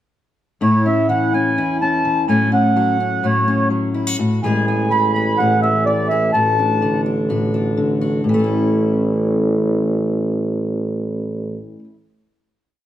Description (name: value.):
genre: indie folk with a building arrangement.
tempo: 126 BPM.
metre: 4/4.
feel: straight.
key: A major.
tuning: A4 = 435 Hz.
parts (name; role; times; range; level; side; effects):
mellow accordion; melody; 0.6-7.0 s; C#5 to B5; -18 LUFS; right 1 dB; none.
fingerpicked steel-string acoustic guitar; accompaniment; 0.6-11.9 s; E2 to G#4; -19 LUFS; left 2 dB; none.
warm tuba; bass; 4.4-11.6 s; A1; -19 LUFS; right 2 dB; none.
room: wet stone room reverb, RT60 1.3 s.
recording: band playing live in one room.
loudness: -15 LUFS.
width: side -12 dB against mid.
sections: 0.6-8.2 verse; 8.2-12.0 final chord.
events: none.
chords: 0.6 A; 2.3 F#m/A; 4.4 E/A; 6.3 D/A; 8.2 A.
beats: | 0.61 1.09 1.56 2.04 | 2.52 2.99 3.47 3.95 | 4.43 4.91 5.38 5.86 | 6.34 6.82 7.29 7.77 | 8.25 8.72 9.20 9.68 | 10.15 10.62 11.10 11.57.